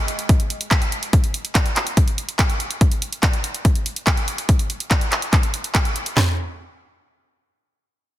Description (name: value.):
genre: psychedelic trance.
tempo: 143 BPM.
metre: 4/4.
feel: straight.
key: none.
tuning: none.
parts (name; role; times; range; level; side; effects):
techno drum kit; drums; 0.1-6.1 s; handclaps, hi-hat; -23 LUFS; right 1 dB; soft clipping on snare.
techno drum kit; drums; 0.3-6.3 s; handclaps, kick drum, snare drum, toms; -17 LUFS; equal; none.
room: little or no reverb.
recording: dense, heavily limited modern master.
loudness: -17 LUFS.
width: side -14 dB against mid.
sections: 0.0-6.2 A section; 6.2-8.2 B section.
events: none.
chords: none.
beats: 0.29 0.71 | 1.13 1.55 1.97 2.39 | 2.81 3.23 3.65 4.07 | 4.49 4.91 5.33 5.75 | 6.17.